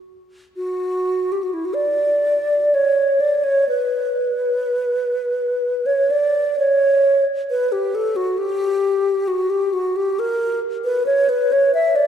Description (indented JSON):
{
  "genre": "classical, free, expressive piece for unaccompanied alto flute",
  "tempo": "42-70 BPM",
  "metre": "3/4",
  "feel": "rubato",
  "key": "B minor",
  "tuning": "A4 = 440 Hz",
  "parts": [
    { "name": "hollow alto flute", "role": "solo", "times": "0.6-12.1 s", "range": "E4 to E5", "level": "-17 LUFS", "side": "equal", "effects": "none" }
  ],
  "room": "wet church reverb, RT60 3.1 s",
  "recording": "dark, warm production",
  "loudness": "-17 LUFS",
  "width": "side -8 dB against mid",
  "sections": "0.6-12.1 A section",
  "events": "none",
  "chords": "none",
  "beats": "| 0.56 1.73 2.72 | 3.67 4.66 5.62 | 6.58 7.50 8.38 | 9.26 10.18 11.07 | 11.95"
}